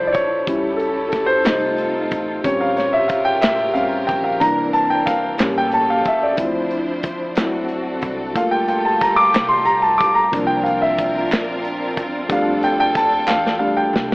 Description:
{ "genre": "slow gospel", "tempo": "61 BPM (dotted quarters)", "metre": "6/8", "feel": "straight", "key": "F major", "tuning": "A4 = 441 Hz", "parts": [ { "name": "dark concert grand piano", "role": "accompaniment", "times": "0.0-14.1 s", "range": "E3 to D6", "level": "-17 LUFS", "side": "equal", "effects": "none" }, { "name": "warm studio string section", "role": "sustained chords", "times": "0.0-14.1 s", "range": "Db3 to C5", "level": "-25 LUFS", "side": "equal", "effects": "none" }, { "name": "upright bass", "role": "bass", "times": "0.0-14.1 s", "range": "F1 to F2", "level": "-34 LUFS", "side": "equal", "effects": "none" }, { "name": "modern studio drum kit", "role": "drums", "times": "0.1-14.1 s", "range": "hi-hat, kick drum, snare drum", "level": "-23 LUFS", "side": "equal", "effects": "none" }, { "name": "group handclap", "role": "percussion", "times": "1.5-13.6 s", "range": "none", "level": "-26 LUFS", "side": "right 1 dB", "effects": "none" } ], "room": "light reverb, studio ambience", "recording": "AM radio sound", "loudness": "-16 LUFS", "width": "side -25 dB against mid", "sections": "0.0-14.1 A section", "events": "grand piano solo 0.0-14.1; drum fill 13.3-14.1", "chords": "0.5 A7/C#; 1.5 F7; 2.4 Bbm6; 4.4 C9; 5.4 A7b9; 6.4 Dm9; 7.4 D7; 8.4 Gm9/D; 10.3 C9sus4; 12.3 F6", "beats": "| 0.47 1.46 | 2.45 3.43 | 4.42 5.41 | 6.39 7.38 | 8.36 9.35 | 10.33 11.31 | 12.29 13.27" }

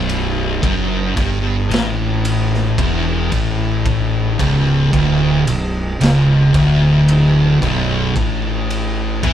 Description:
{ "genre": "stoner and doom metal", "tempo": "56 BPM", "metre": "4/4", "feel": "straight", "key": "B minor", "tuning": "A4 = 440 Hz", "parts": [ { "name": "thick fuzz guitar", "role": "riff", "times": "0.0-9.3 s", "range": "B1 to E3", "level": "-18 LUFS", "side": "left 5 dB", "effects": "distortion" }, { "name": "thick fuzz guitar", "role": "riff", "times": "0.0-9.3 s", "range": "B1 to E3", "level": "-18 LUFS", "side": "right 4 dB", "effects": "distortion" }, { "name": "fuzz fingered electric bass", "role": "bass", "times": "0.0-9.3 s", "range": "B0 to E2", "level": "-21 LUFS", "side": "equal", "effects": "overdrive" }, { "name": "raw garage drum kit", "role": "drums", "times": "0.1-9.3 s", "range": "kick drum, ride cymbal, snare drum", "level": "-22 LUFS", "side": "equal", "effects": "none" } ], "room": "light reverb", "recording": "band playing live in one room", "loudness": "-13 LUFS", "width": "side -10 dB against mid", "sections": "0.0-9.3 A section", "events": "none", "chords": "0.0 Bm; 8.2 A5", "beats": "0.63 1.71 2.78 | 3.86 4.93 6.01 7.08 | 8.16 9.24" }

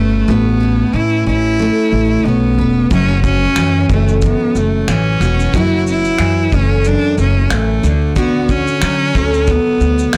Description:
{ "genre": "acoustic pop", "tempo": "91 BPM", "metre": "4/4", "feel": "swing 55% on 16ths", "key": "unclear", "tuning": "A4 = 438 Hz", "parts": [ { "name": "bright cello", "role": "melody", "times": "0.0-10.2 s", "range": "A3 to E4", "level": "-19 LUFS", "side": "equal", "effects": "none" }, { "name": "picked steel-string acoustic guitar", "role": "accompaniment", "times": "0.0-10.2 s", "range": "F#2 to B4", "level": "-19 LUFS", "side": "equal", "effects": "double-tracked" }, { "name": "upright bass", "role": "bass", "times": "0.0-10.2 s", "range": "E1 to D3", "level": "-18 LUFS", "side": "equal", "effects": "transformer saturation" }, { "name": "modern studio drum kit", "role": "drums", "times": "2.9-10.2 s", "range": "finger snaps, kick drum, shaker", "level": "-23 LUFS", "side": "equal", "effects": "soft clipping on snare" } ], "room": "light reverb", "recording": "blown-out, overdriven recording, overdrive", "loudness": "-14 LUFS", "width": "mono", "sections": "0.0-10.2 A section", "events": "none", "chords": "0.0 Aadd9; 2.9 F#m7; 7.8 D", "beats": "| 0.28 0.94 1.59 2.25 | 2.91 3.57 4.22 4.88 | 5.54 6.20 6.85 7.51 | 8.17 8.82 9.48 10.14" }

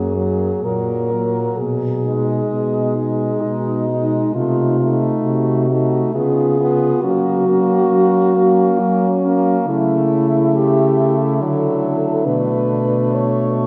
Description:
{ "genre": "classical, lyrical piece for horn quartet", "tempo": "62-72 BPM", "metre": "3/4", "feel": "rubato", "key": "F# major", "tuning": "A4 = 442 Hz", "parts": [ { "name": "warm French horn", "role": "melody", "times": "0.0-13.7 s", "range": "C#4 to C#5", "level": "-22 LUFS", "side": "equal", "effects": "none" }, { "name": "mellow French horn", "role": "second line", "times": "0.0-13.7 s", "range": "A#3 to E#4", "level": "-26 LUFS", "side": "equal", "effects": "none" }, { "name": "clear French horn", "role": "accompaniment", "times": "0.0-13.7 s", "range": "F#3 to B3", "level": "-24 LUFS", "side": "equal", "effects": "none" }, { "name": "dark French horn", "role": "bass", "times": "0.0-13.7 s", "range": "F#2 to F#3", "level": "-22 LUFS", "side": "equal", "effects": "none" } ], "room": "wet church reverb, RT60 3.0 s", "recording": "dark, warm production", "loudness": "-17 LUFS", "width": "mono", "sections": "0.0-13.7 A section", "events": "none", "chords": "0.0 F#; 0.6 F#/A#; 1.6 G#m/B; 4.3 Cdim7; 6.1 C#7; 7.0 F#; 9.7 A/C#; 11.4 D; 12.3 Bm7", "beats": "0.63 | 1.59 2.51 3.42 | 4.35 5.24 6.15 | 7.04 7.92 8.80 | 9.68 10.56 11.41 | 12.27 13.16" }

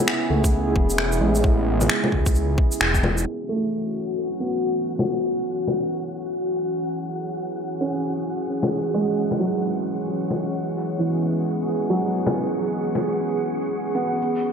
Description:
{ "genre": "future garage", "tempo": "132 BPM", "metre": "4/4", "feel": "swing 61% on 16ths", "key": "F# minor", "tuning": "A4 = 440 Hz", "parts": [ { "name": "felt-muted upright piano", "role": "accompaniment", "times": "0.0-14.5 s", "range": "E3 to C#4", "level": "-27 LUFS", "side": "right 2 dB", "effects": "sidechain pumping, tape echo" }, { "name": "warbly tape-like pad", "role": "sustained chords", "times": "0.0-14.5 s", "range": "C#3 to G#4", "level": "-24 LUFS", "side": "equal", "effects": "chorus, built-in reverb, vintage 12-bit sampler grit, sidechain pumping" }, { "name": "electronic finger snaps, shaker and bongos", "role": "drums", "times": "0.1-5.7, 8.6-13.0 s", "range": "none", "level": "-24 LUFS", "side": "left 2 dB", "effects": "overdrive" }, { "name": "swelling detuned saw bass", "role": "bass", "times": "0.3-3.2 s", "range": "E1 to C#2", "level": "-23 LUFS", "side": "equal", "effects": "sidechain pumping" }, { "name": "electronic kick drum", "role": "drums", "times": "0.4-3.0 s", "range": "none", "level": "-20 LUFS", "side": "equal", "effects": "none" }, { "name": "wind-like tuned noise texture", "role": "texture", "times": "3.9-14.5 s", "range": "F#4 to F#5", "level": "-36 LUFS", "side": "left 2 dB", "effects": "built-in reverb" } ], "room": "wet plate reverb, RT60 2.0 s", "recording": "dreamy mix soaked in reverb, low-pass filter", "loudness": "-21 LUFS", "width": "side -7 dB against mid", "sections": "0.0-3.3 A section; 3.3-14.5 B section", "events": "band accent 2.8; filter sweep 3.3-14.5", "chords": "0.0 Amaj9; 3.3 F#m7; 10.5 E69", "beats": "0.08 0.54 0.99 | 1.44 1.90 2.35 2.81 | 3.26 3.72 4.17 4.63 | 5.08 5.54 5.99 6.44 | 6.90 7.35 7.81 8.26 | 8.72 9.17 9.63 10.08 | 10.54 10.99 11.44 11.90 | 12.35 12.81 13.26 13.72 | 14.17" }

